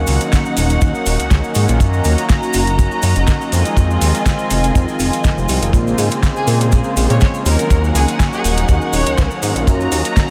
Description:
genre	nu-disco, nu disco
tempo	122 BPM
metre	4/4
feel	swing 54% on 16ths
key	unclear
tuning	A4 = 438 Hz
part	warm analog pad	accompaniment	0.0-10.3 s	Db3 to Gb4	-23 LUFS	equal	chorus, cassette tape, analog delay
part	dark symphonic string section	sustained chords	0.0-10.3 s	Bb3 to Bb5	-25 LUFS	equal	sidechain pumping
part	chorused synth bass	bass	0.0-10.0 s	Eb1 to Bb2	-18 LUFS	equal	none
part	pop drum kit	drums	0.1-10.3 s	hi-hat, snare drum	-26 LUFS	equal	none
part	cabasa	percussion	0.1-10.3 s	none	-32 LUFS	equal	none
part	kick drum	drums	0.3-10.3 s	none	-16 LUFS	equal	none
part	warm symphonic violin section	melody	6.4-9.3 s	Ab4 to Db5	-26 LUFS	equal	analog delay
room	light reverb, small room ambience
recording	none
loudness	-15 LUFS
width	mono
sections	0.0-10.3 A section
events	none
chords	0.0 Ebm7; 1.8 Gb6; 3.5 Fm7; 5.7 Bbm9; 7.5 Ebm7; 9.7 Gb6

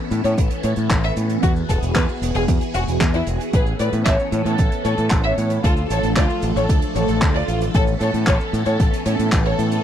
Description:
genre	italo disco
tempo	114 BPM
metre	4/4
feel	straight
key	A major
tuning	A4 = 440 Hz
part	phased string machine	sustained chords	0.0-9.8 s	E3 to A4	-25 LUFS	right 1 dB	ensemble chorus, phaser
part	growling fingered electric bass	bass	0.1-9.8 s	E1 to A2	-22 LUFS	equal	overdrive
part	damped 70s drum kit	drums	0.1-9.8 s	cabasa, handclaps, hi-hat	-27 LUFS	equal	studio ambience
part	warm chamber violin section	melody	0.2-9.8 s	C#4 to E5	-24 LUFS	left 1 dB	low-pass filter, tape echo
part	electronic kick drum	drums	0.4-9.4 s	none	-19 LUFS	equal	studio ambience
room	studio ambience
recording	dry, close 1970s-style studio recording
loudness	-17 LUFS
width	side -10 dB against mid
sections	0.0-3.5 A section; 3.5-9.8 B section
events	none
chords	0.0 Aadd9; 1.4 Eadd9; 3.5 Aadd9; 5.6 Dm; 7.7 Aadd9

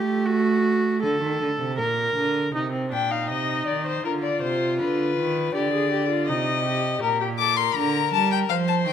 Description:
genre	classical, baroque-style fugue for string quartet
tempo	80 BPM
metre	3/4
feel	straight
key	C minor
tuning	A4 = 438 Hz
part	warm viola	accompaniment	0.0-7.0 s	C4 to Bb4	-26 LUFS	equal	none
part	rich cello	bass	0.0-8.9 s	Bb2 to A3	-26 LUFS	right 5 dB	none
part	dark violin	second line	2.9-8.9 s	G4 to G5	-25 LUFS	left 6 dB	none
part	rich violin	melody	7.4-8.9 s	F5 to D6	-22 LUFS	left 13 dB	none
room	moderate recital hall reverb, RT60 1.6 s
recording	none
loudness	-21 LUFS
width	side -8 dB against mid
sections	0.0-2.5 A section; 2.5-8.9 B section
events	none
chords	0.3 D/A; 1.8 Bb; 2.5 Cm; 4.0 Bb/D (rootless); 4.8 G/D; 6.3 Cm; 7.0 Gm/Bb

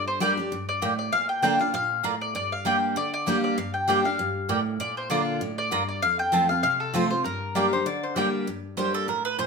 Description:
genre	bluegrass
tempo	196 BPM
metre	4/4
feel	swing 55% on 8ths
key	G minor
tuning	A4 = 440 Hz
part	mandolin	melody	0.0-8.1 s	A4 to G5	-26 LUFS	left 2 dB	none
part	picked steel-string acoustic guitar	accompaniment	0.0-9.5 s	F2 to G4	-28 LUFS	left 1 dB	none
part	mandolin	stabs	0.2-9.5 s	Bb3 to Bb5	-27 LUFS	right 5 dB	none
part	lap resonator guitar	second line	7.6-8.5 s	Bb4 to D5	-30 LUFS	left 4 dB	none
room	wet studio reverb, RT60 0.7 s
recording	minimal, uncompressed stereo recording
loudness	-23 LUFS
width	side -4 dB against mid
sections	0.0-8.5 A section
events	none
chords	0.0 Gm; 1.1 Bb; 2.4 Gm; 4.8 Bb; 6.0 F; 7.2 Gm

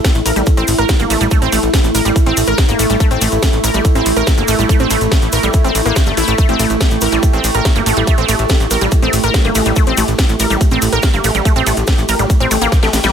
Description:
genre	psychedelic trance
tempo	142 BPM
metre	4/4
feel	straight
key	unclear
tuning	A4 = 440 Hz
part	pulsing gated texture	sustained chords	0.0-13.1 s	A3 to G4	-20 LUFS	right 2 dB	chorus, built-in reverb, sidechain pumping
part	electronic kick drum	drums	0.0-12.8 s	none	-13 LUFS	equal	small room ambience
part	techno drum kit	drums	0.0-13.1 s	hi-hat, ride cymbal, snare drum	-21 LUFS	equal	small room ambience
part	tube shaker	percussion	0.0-13.1 s	none	-24 LUFS	right 1 dB	none
part	deep dark ambient pad	texture	0.0-13.1 s	E4 to E5	-22 LUFS	equal	chorus, built-in reverb, sidechain pumping
part	plucky analog bass	bass	0.2-13.1 s	G1 to A1	-17 LUFS	equal	none
part	wide unison pluck	riff	0.3-13.1 s	G3 to Bb4	-18 LUFS	moving between left 5 dB and right 7 dB	auto-pan, cassette tape, sidechain pumping, digital delay
room	light reverb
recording	none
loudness	-11 LUFS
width	side -8 dB against mid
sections	0.0-13.1 A section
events	drum fill 12.7-13.1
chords	0.0 A5

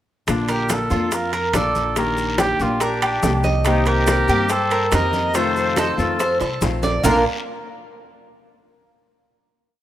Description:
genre	latin, Cuban son and guajira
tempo	142 BPM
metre	4/4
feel	straight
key	Bb major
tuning	A4 = 438 Hz
part	warm trumpet	melody	0.3-7.2 s	D4 to C5	-24 LUFS	right 2 dB	none
part	nylon-string guitar	accompaniment	0.3-7.2 s	Bb2 to G4	-25 LUFS	left 3 dB	none
part	upright bass	bass	0.3-7.2 s	Bb1 to G2	-24 LUFS	equal	none
part	bongos	percussion	0.3-7.1 s	none	-30 LUFS	left 5 dB	none
part	congas	percussion	0.3-7.1 s	none	-27 LUFS	left 1 dB	none
part	guiro	percussion	0.3-7.1 s	none	-36 LUFS	left 4 dB	none
part	maracas	percussion	0.3-7.1 s	none	-34 LUFS	left 4 dB	none
part	timbales	percussion	0.3-7.1 s	none	-28 LUFS	right 6 dB	none
part	Cuban tres	arpeggios	0.5-7.2 s	Bb3 to Eb5	-23 LUFS	right 2 dB	none
part	bright reedy concert flute	second line	2.8-7.2 s	F4 to Eb5	-26 LUFS	left 4 dB	none
room	light reverb, studio reverb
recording	rough home demo mix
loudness	-17 LUFS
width	side -12 dB against mid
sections	0.3-7.0 verse; 7.0-8.7 final chord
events	drum fill 6.4-7.0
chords	0.3 Bb; 2.0 Ebmaj7/Bb; 3.7 Cm7; 5.3 F7; 7.0 Bb

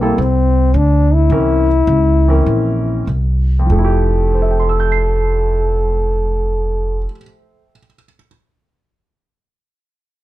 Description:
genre	jazz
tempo	94-110 BPM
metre	4/4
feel	swing 67% on 8ths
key	F major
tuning	A4 = 435 Hz
part	breathy trombone	melody	0.0-7.1 s	Bb3 to A4	-17 LUFS	left 2 dB	plate reverb
part	warm concert grand piano	accompaniment	0.0-8.3 s	F2 to C7	-21 LUFS	equal	none
part	upright bass	bass	0.0-7.0 s	F1 to D2	-15 LUFS	right 1 dB	none
room	light reverb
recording	dark, warm production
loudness	-12 LUFS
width	side -15 dB against mid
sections	0.0-3.7 A section; 3.7-8.8 B section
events	slowing down 0.0-3.7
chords	0.0 Am7 (rootless); 1.3 C7b9; 3.7 Fmaj9

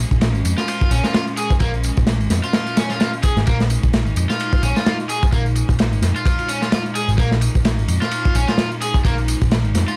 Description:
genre	breakbeat, breaks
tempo	129 BPM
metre	4/4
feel	swing 57% on 16ths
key	Bb minor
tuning	A4 = 442 Hz
part	warbly tape-like pad	sustained chords	0.0-10.0 s	Bb2 to Eb4	-30 LUFS	equal	chorus, built-in reverb, vintage 12-bit sampler grit, sidechain pumping
part	picked electric bass	bass	0.0-9.8 s	Ab1 to F2	-21 LUFS	equal	none
part	crunchy breakbeat drum kit	drums	0.1-9.9 s	kick drum, ride cymbal, snare drum	-22 LUFS	equal	none
part	tambourine	drums	0.1-10.0 s	none	-36 LUFS	equal	none
part	raw garage guitar	riff	0.6-10.0 s	Bb3 to Ab4	-27 LUFS	equal	overdrive, dub echo
room	little or no reverb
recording	vinyl crackle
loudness	-18 LUFS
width	mono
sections	0.0-10.0 A section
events	none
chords	0.0 Bbm7

